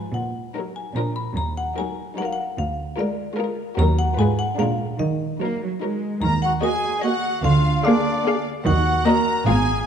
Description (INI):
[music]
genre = cinematic, playful, whimsical film cue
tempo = 148 BPM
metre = 3/4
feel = straight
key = Eb minor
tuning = A4 = 441 Hz
[part]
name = rich studio violin section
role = melody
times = 0.0-9.8 s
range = Bb4 to F5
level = -31 LUFS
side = left 6 dB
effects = none
[part]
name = xylophone with wooden mallets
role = melody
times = 0.0-9.8 s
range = D5 to Cb6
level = -30 LUFS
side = left 4 dB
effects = none
[part]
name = rich studio violin section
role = second line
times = 0.0-9.9 s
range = D4 to Bb5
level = -30 LUFS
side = left 3 dB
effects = none
[part]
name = rich studio viola section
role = accompaniment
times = 0.0-9.8 s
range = F3 to Ab4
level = -25 LUFS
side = right 1 dB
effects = none
[part]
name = rich studio cello section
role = bass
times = 0.0-9.8 s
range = D2 to Bb3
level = -23 LUFS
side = right 2 dB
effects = none
[part]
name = mellow cor anglais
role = second line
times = 6.2-9.9 s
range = D4 to Bb4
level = -24 LUFS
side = right 2 dB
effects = none
[part]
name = rich studio double bass section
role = bass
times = 6.2-9.8 s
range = Ab1 to Eb2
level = -24 LUFS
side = right 2 dB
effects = none
[sound]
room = moderate concert hall reverb, RT60 2.0 s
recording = dark, warm production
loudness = -20 LUFS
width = side -8 dB against mid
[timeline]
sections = 0.0-6.2 A section; 6.2-9.9 A section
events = none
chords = 0.1 Ebm/Bb; 1.0 Bb; 1.4 Ebm; 2.6 Bb7/D; 3.8 Ebm; 4.2 Fdim/Ab; 4.6 Bb7; 5.0 Ebm; 7.5 Bb7/D; 8.7 Ebm; 9.5 Fdim/Ab